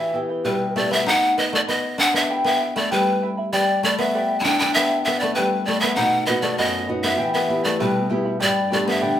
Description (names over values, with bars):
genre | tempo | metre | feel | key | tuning
andean folk, Andean ensemble | 98 BPM | 2/4 | straight | E minor | A4 = 440 Hz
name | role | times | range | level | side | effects
breathy pan flute | melody | 0.0-9.2 s | B4 to A5 | -20 LUFS | equal | none
charango | accompaniment | 0.0-9.2 s | E4 to B5 | -26 LUFS | left 1 dB | none
nylon-string guitar | accompaniment | 0.0-1.0, 6.0-9.2 s | F#2 to G4 | -25 LUFS | equal | none
koto | second line | 0.5-9.2 s | G3 to E4 | -24 LUFS | left 1 dB | none
room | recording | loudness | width
wet large studio reverb, RT60 0.8 s | band playing live in one room | -18 LUFS | side -10 dB against mid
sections
0.0-1.1 A section; 1.1-9.2 B section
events
none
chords
0.0 Em; 1.1 B; 2.3 Em; 3.5 G; 4.7 Em; 6.0 B; 7.2 Em; 8.4 G